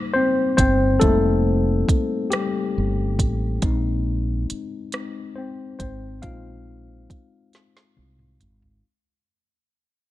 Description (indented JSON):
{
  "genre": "slow six-eight R&B",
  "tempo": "46 BPM (dotted quarters)",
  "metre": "6/8",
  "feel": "straight",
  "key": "unclear",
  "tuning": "A4 = 441 Hz",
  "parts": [
    { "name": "tine electric piano", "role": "accompaniment", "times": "0.0-8.9 s", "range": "G3 to F5", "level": "-22 LUFS", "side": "left 2 dB", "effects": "overdrive" },
    { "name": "mellow fretless electric bass", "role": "bass", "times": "0.6-8.8 s", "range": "F1 to C2", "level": "-24 LUFS", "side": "right 1 dB", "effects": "none" },
    { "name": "smooth R&B drum kit", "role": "drums", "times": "0.6-8.8 s", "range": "hi-hat, kick drum, rim click, snare drum, toms", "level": "-23 LUFS", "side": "right 1 dB", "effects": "none" }
  ],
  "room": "little or no reverb",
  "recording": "dark, warm production",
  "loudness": "-19 LUFS",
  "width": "side -15 dB against mid",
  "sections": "0.0-8.8 A section",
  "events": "fade-out 0.0-8.8; tine electric piano solo 0.0-8.8; drum fill 7.5-8.8",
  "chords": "0.0 F9sus4; 3.6 Bb9sus4",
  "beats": "| 1.01 2.31 | 3.62 4.92 | 6.23 7.53"
}